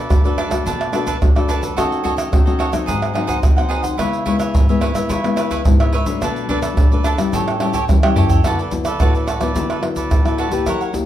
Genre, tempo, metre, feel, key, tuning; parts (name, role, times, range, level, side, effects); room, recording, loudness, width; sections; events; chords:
samba and choro; 108 BPM; 4/4; straight; A4 = 436 Hz
cavaquinho; accompaniment; 0.0-11.0 s; D4 to G5; -23 LUFS; right 4 dB
nylon-string guitar; accompaniment; 0.0-11.1 s; F#2 to G4; -21 LUFS; left 5 dB
tube shaker, surdo, pandeiro and tamborim; percussion; 0.1-11.1 s; -17 LUFS; right 1 dB
moderate large studio reverb, RT60 0.8 s; minimal, uncompressed stereo recording; -15 LUFS; side -12 dB against mid
0.0-8.4 A section; 8.4-11.1 B section
drum fill 8.0-8.4
0.0 Bm7; 1.8 D#m7b5; 2.9 G#7; 4.0 C#m7; 6.2 Bm7; 7.3 A7; 8.4 D69